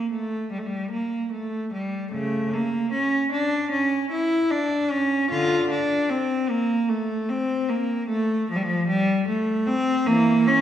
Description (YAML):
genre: classical, baroque-style suite movement for unaccompanied cello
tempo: 76 BPM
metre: 4/4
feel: rubato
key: D minor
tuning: A4 = 439 Hz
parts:
  - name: rich cello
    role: solo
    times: 0.0-10.6 s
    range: C#3 to F4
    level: -21 LUFS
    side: equal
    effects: none
room: wet scoring stage reverb, RT60 1.5 s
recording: heard from further back in the room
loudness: -21 LUFS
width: side -10 dB against mid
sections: 0.0-10.6 A section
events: none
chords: none